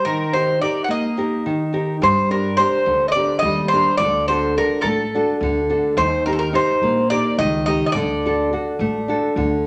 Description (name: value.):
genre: greek folk, Greek bouzouki band.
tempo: 212 BPM (eighths).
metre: 7/8.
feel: straight.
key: D phrygian dominant.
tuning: A4 = 440 Hz.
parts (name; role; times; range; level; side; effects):
Greek bouzouki; melody; 0.0-9.3 s; A4 to F#5; -21 LUFS; equal; none.
nylon-string guitar; accompaniment; 0.0-9.7 s; D3 to Bb4; -23 LUFS; equal; none.
upright bass; bass; 2.0-9.7 s; A1 to G2; -29 LUFS; equal; none.
room: wet large studio reverb, RT60 0.8 s.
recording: none.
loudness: -19 LUFS.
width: mono.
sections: 0.0-9.7 A section.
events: none.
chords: 0.0 Eb; 2.0 Gm; 4.0 D; 6.0 Eb; 7.9 D.